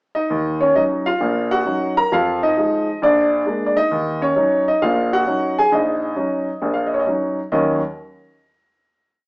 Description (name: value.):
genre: solo jazz.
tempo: 133 BPM.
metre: 4/4.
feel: swing 66% on 8ths.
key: Eb minor.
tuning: A4 = 444 Hz.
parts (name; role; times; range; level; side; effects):
warm concert grand piano; solo; 0.1-7.8 s; Bb1 to Bb5; -16 LUFS; equal; none.
room: wet studio reverb, RT60 0.8 s.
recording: band playing live in one room, small speaker sound.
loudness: -16 LUFS.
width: side -27 dB against mid.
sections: 0.0-0.3 pickup bar; 0.3-7.5 A section; 7.5-9.3 final chord.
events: none.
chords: 0.3 Ebm7; 2.1 Fm7; 3.0 Bb7; 3.9 Ebm7.